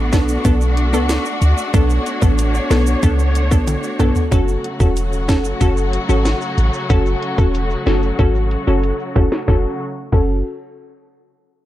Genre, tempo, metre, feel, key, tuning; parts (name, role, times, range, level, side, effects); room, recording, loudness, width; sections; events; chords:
dancehall; 93 BPM; 4/4; straight; F# minor; A4 = 438 Hz
glassy wavetable pluck; accompaniment; 0.0-10.4 s; B3 to A4; -21 LUFS; left 1 dB; chorus
warm studio string section; sustained chords; 0.0-9.8 s; C#3 to C#5; -24 LUFS; left 1 dB; sidechain pumping
clean 808-style bass; bass; 0.0-10.4 s; E1 to D2; -17 LUFS; equal
island pop drum kit; drums; 0.1-10.3 s; crash cymbal, hi-hat, kick drum, snare drum, toms; -17 LUFS; equal
tube shaker and timbales; percussion; 0.1-10.4 s; -32 LUFS; right 7 dB
little or no reverb; dark, warm production, low-pass filter; -14 LUFS; side -14 dB against mid
0.0-4.3 A section; 4.3-9.5 B section; 9.5-11.7 C section
drum fill 3.7-4.3; filter sweep 4.3-9.5
0.0 Bm7; 4.3 F#m